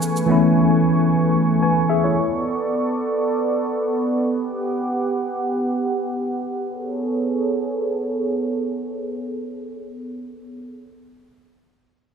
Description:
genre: amapiano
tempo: free time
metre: none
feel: none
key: A major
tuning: A4 = 443 Hz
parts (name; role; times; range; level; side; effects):
- tine electric piano; accompaniment; 0.0-2.4 s; E3 to G#5; -16 LUFS; left 1 dB; medium stereo tremolo, low-pass filter
- warm analog pad; sustained chords; 0.0-10.9 s; A3 to D6; -22 LUFS; right 2 dB; chorus, low-pass filter
room: moderate scoring stage reverb, RT60 1.9 s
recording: none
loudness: -19 LUFS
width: side -6 dB against mid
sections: 0.0-6.7 A section; 6.7-11.0 B section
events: filter sweep 0.0-6.7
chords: 0.0 Amaj9; 2.2 Bm9; 4.3 Gmaj7/B; 6.7 Amaj9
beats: free time

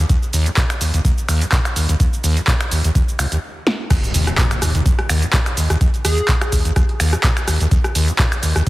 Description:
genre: acid house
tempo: 126 BPM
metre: 4/4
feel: swing 54% on 16ths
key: Eb minor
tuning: A4 = 440 Hz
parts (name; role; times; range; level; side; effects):
- acid bass, saw; riff; 0.0-8.7 s; Db2 to Bb2; -19 LUFS; equal; lush chorus
- electronic kick drum; drums; 0.1-8.7 s; none; -17 LUFS; equal; none
- punchy analog drum machine; drums; 0.1-8.7 s; crash cymbal, finger snaps, handclaps, hi-hat, rim click, shaker, snare drum; -21 LUFS; equal; overdrive
- impact; sound effects; 3.9-5.8 s; none; -25 LUFS; equal; none
- plucky unison lead; melody; 6.0-6.5 s; Ab4; -28 LUFS; equal; vintage 12-bit sampler grit, dub echo
room: little or no reverb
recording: heavily compressed radio sound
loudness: -15 LUFS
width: side -18 dB against mid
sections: 0.0-3.9 A section; 3.9-8.7 B section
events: stop 3.4-3.9; drum fill 3.7; drop 3.9-8.7; impact 3.9-5.8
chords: none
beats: | 0.10 0.57 1.05 1.52 | 2.00 2.48 2.95 3.43 | 3.90 4.38 4.86 5.33 | 5.81 6.29 6.76 7.24 | 7.71 8.19 8.67

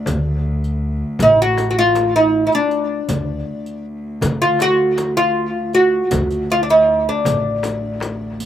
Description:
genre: Arabic maqam ensemble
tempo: 79 BPM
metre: 4/4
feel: straight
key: D maqam saba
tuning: A4 = 440 Hz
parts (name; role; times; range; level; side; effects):
- oud; melody; 0.0-8.5 s; D4 to F#4; -15 LUFS; equal; slapback echo
- muted cello; drone; 0.0-8.5 s; D2; -28 LUFS; equal; none
- upright bass; bass; 0.1-8.5 s; A1 to D3; -24 LUFS; equal; none
- darbuka; percussion; 0.1-8.2 s; none; -27 LUFS; right 2 dB; none
- frame drum; percussion; 0.1-8.2 s; none; -27 LUFS; left 4 dB; slapback echo
- riq; percussion; 0.1-8.5 s; none; -30 LUFS; right 2 dB; none
room: little or no reverb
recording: recorded outdoors, with no room sound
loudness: -15 LUFS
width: side -10 dB against mid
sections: 0.0-8.5 A section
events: none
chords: none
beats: | 0.07 0.83 1.59 2.34 | 3.10 3.86 4.61 5.37 | 6.13 6.88 7.64 8.40

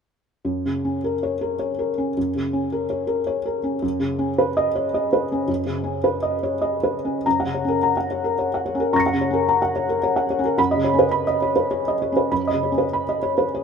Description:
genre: neoclassical minimalist piano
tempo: 92-111 BPM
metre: 3/4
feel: rubato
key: F# major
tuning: A4 = 436 Hz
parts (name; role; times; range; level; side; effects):
- felt-muted upright piano; solo; 0.4-13.6 s; F#2 to C#7; -19 LUFS; equal; none
room: moderate huge ambient reverb, RT60 5.0 s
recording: minimal, uncompressed stereo recording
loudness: -20 LUFS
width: side -6 dB against mid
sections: 0.5-7.2 A section; 7.2-13.6 B section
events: none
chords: 0.5 F#; 3.8 Badd9/F#; 7.2 F#; 10.6 Badd9/F#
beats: | 0.45 1.03 1.60 | 2.16 2.72 3.28 | 3.83 4.38 4.93 | 5.49 6.04 6.62 | 7.25 7.84 8.40 | 8.95 9.49 10.04 | 10.59 11.14 11.71 | 12.31 12.91 13.50

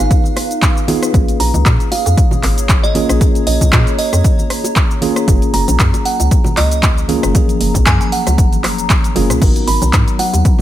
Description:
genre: deep house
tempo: 116 BPM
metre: 4/4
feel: swing 55% on 16ths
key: unclear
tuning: A4 = 441 Hz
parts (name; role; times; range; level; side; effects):
- glassy synth bell; melody; 0.0-10.4 s; D#5 to B5; -21 LUFS; right 3 dB; chorus, ping-pong delay
- mellow tine electric piano; stabs; 0.0-10.6 s; E#3 to A#4; -20 LUFS; equal; medium stereo tremolo, sidechain pumping, low-pass filter, tape echo
- hollow knocking FM bass; bass; 0.0-10.4 s; F#1 to A#2; -16 LUFS; equal; tube saturation, sidechain pumping
- deep house drum kit; drums; 0.0-10.6 s; crash cymbal, handclaps, hi-hat, rim click, shaker; -19 LUFS; equal; overdrive
- warbly tape-like pad; texture; 0.0-10.6 s; F#3 to A#5; -24 LUFS; equal; chorus, built-in reverb, sidechain pumping
- electronic kick drum; drums; 0.1-10.6 s; none; -13 LUFS; equal; overdrive
- congas and bongos; percussion; 0.2-10.6 s; none; -25 LUFS; right 3 dB; sidechain pumping on perc
room: digital ambience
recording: none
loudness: -11 LUFS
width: side -13 dB against mid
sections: 0.0-10.6 A section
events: none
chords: 0.0 C#9 (rootless); 1.1 A#m7; 5.3 F#maj7; 9.4 G#m9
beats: 0.11 0.62 | 1.14 1.66 2.18 2.69 | 3.21 3.73 4.25 4.76 | 5.28 5.80 6.31 6.83 | 7.35 7.87 8.38 8.90 | 9.42 9.93 10.45

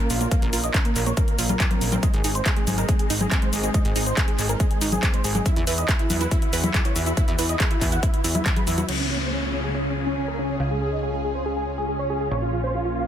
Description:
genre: uplifting trance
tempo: 140 BPM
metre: 4/4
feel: straight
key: unclear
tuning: A4 = 440 Hz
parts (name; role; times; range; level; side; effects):
- dense compressed supersaw; melody; 0.0-13.0 s; Db4 to B5; -28 LUFS; right 1 dB; cassette tape, sidechain pumping, low-pass filter, ping-pong delay
- lush unison pad; sustained chords; 0.0-13.1 s; Db3 to B4; -32 LUFS; equal; chorus, phaser, sidechain pumping
- wide unison pluck; arpeggios; 0.0-8.8 s; F3 to E5; -31 LUFS; right 4 dB; sidechain pumping, ping-pong delay
- plucky analog bass; bass; 0.1-13.1 s; Ab1 to E2; -27 LUFS; equal; sidechain pumping
- big-room dance drum kit; drums; 0.1-9.0 s; congas, crash cymbal, handclaps, hi-hat, shaker; -26 LUFS; left 1 dB; none
- electronic kick drum; drums; 0.3-8.5 s; none; -22 LUFS; equal; none
- downlifter; sound effects; 8.9-12.3 s; none; -32 LUFS; left 2 dB; none
room: little or no reverb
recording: dense, heavily limited modern master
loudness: -20 LUFS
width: side -10 dB against mid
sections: 0.0-8.9 A section; 8.9-13.1 B section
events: none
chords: 0.0 Bbm; 2.0 Ab; 5.5 Esus2; 8.9 Db; 12.3 Bbm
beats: | 0.32 0.74 1.17 1.60 | 2.03 2.46 2.89 3.31 | 3.74 4.17 4.60 5.03 | 5.46 5.89 6.32 6.74 | 7.17 7.60 8.03 8.46 | 8.89 9.31 9.74 10.17 | 10.60 11.03 11.46 11.89 | 12.31 12.74

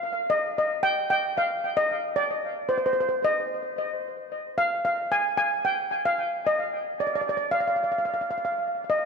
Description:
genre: calypso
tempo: 112 BPM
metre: 4/4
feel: straight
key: Eb major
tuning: A4 = 435 Hz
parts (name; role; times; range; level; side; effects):
- steel pan; solo; 0.3-9.1 s; C5 to Ab5; -24 LUFS; equal; tape echo
room: wet plate reverb, RT60 2.7 s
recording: dreamy mix soaked in reverb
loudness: -24 LUFS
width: side -5 dB against mid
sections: 0.3-9.1 A section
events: none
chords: none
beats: | 0.27 0.81 1.34 1.88 | 2.42 2.95 3.49 4.03 | 4.56 5.10 5.63 6.17 | 6.71 7.24 7.78 8.31 | 8.85

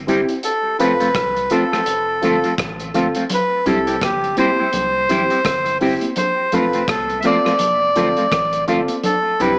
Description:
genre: roots reggae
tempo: 84 BPM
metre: 4/4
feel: swing 59% on 16ths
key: unclear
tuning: A4 = 440 Hz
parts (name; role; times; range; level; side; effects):
- warm sub bass; bass; 0.0-9.6 s; F1 to C2; -36 LUFS; equal; none
- electric guitar with an envelope filter; accompaniment; 0.1-9.5 s; F3 to G4; -26 LUFS; equal; analog chorus, tape echo
- dark baby grand piano; stabs; 0.1-9.6 s; C4 to A4; -24 LUFS; equal; none
- crunchy breakbeat drum kit; drums; 0.1-9.6 s; hi-hat, kick drum, rim click; -28 LUFS; equal; none
- melodica; melody; 0.4-9.6 s; G4 to E5; -21 LUFS; equal; tape echo
- congas; percussion; 3.3-9.6 s; none; -30 LUFS; equal; none
room: moderate spring reverb, RT60 2.4 s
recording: small speaker sound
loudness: -18 LUFS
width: mono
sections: 0.0-9.6 A section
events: none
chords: 0.4 F; 3.3 C; 6.2 F; 9.0 C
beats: | 0.43 1.15 1.87 2.58 | 3.30 4.02 4.73 5.45 | 6.17 6.88 7.60 8.32 | 9.03

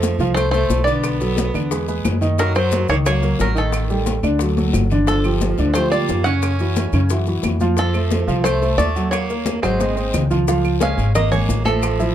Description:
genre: Afro-Cuban jazz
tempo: 178 BPM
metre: 4/4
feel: straight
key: unclear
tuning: A4 = 440 Hz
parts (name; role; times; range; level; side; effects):
- bluegrass banjo; melody; 0.0-12.1 s; A4 to Gb5; -22 LUFS; equal; none
- edgy tenor saxophone; second line; 0.0-12.1 s; Eb3 to Db4; -27 LUFS; right 5 dB; none
- warm concert grand piano; accompaniment; 0.0-12.1 s; Db3 to Bb5; -22 LUFS; right 2 dB; none
- upright bass; bass; 0.0-12.1 s; G1 to F#2; -20 LUFS; equal; none
- bongos; percussion; 0.0-12.1 s; none; -30 LUFS; left 8 dB; none
- congas; percussion; 0.0-12.1 s; none; -27 LUFS; left 2 dB; none
- guiro; percussion; 0.0-12.1 s; none; -36 LUFS; left 7 dB; none
- maracas; percussion; 0.0-12.1 s; none; -35 LUFS; left 7 dB; none
- claves; percussion; 0.4-12.0 s; none; -32 LUFS; right 6 dB; none
room: light reverb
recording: dark, warm production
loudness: -16 LUFS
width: side -10 dB against mid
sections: 0.0-10.5 A section; 10.5-12.1 B section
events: drum fill 4.6-5.1, 9.8-10.5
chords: 0.0 F; 1.0 Bm7; 1.7 Eadd9; 2.4 Gb6; 3.7 Ebmaj7#11/A; 4.4 D; 5.1 Gm9; 6.4 Gb5; 7.8 F; 9.1 Ebm7; 9.8 Ab; 10.5 Db6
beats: 0.03 0.36 0.70 | 1.04 1.38 1.71 2.05 | 2.38 2.72 3.06 3.40 | 3.73 4.07 4.41 4.74 | 5.08 5.42 5.75 6.09 | 6.43 6.76 7.10 7.44 | 7.78 8.11 8.45 8.79 | 9.13 9.46 9.80 10.14 | 10.47 10.81 11.15 11.49 | 11.82

